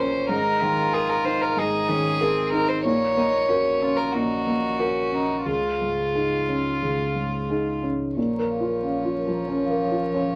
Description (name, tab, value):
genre	neoclassical piano and strings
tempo	92 BPM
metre	4/4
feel	rubato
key	Bb minor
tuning	A4 = 440 Hz
part	warm violin	melody	0.0-10.4 s	F4 to Db5	-28 LUFS	equal	none
part	clear cello	second line	0.0-10.4 s	F3 to F4	-33 LUFS	equal	none
part	warm grand piano	accompaniment	0.0-10.4 s	Db2 to Bb4	-26 LUFS	equal	none
part	sub bass with octave	bass	0.0-10.4 s	Ab1 to Db2	-40 LUFS	equal	none
part	vibraphone with soft mallets	arpeggios	8.2-10.2 s	Bb4 to Bb5	-32 LUFS	equal	none
room	wet studio reverb, RT60 0.7 s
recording	vinyl crackle, faint mains hum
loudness	-24 LUFS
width	mono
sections	0.0-8.2 A section; 8.2-10.4 B section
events	none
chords	0.3 Absus2; 2.9 Gb/Bb; 5.5 Dbadd9; 8.2 Bbm